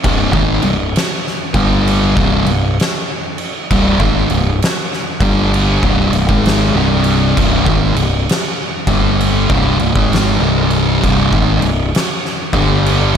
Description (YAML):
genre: stoner and doom metal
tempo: 66 BPM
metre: 4/4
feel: swing 64% on 8ths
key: C minor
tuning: A4 = 439 Hz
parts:
  - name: thick fuzz guitar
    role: riff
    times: 0.0-13.2 s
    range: C2 to Ab3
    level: -14 LUFS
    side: equal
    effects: distortion
  - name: growling picked electric bass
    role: bass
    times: 0.0-13.2 s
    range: C1 to Ab1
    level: -17 LUFS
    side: equal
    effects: overdrive
  - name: oversized low-tuned drum kit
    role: drums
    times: 0.0-13.1 s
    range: crash cymbal, kick drum, snare drum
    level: -17 LUFS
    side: equal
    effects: none
room: little or no reverb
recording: none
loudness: -12 LUFS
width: side -8 dB against mid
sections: 0.0-13.2 A section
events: none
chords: 0.0 Cm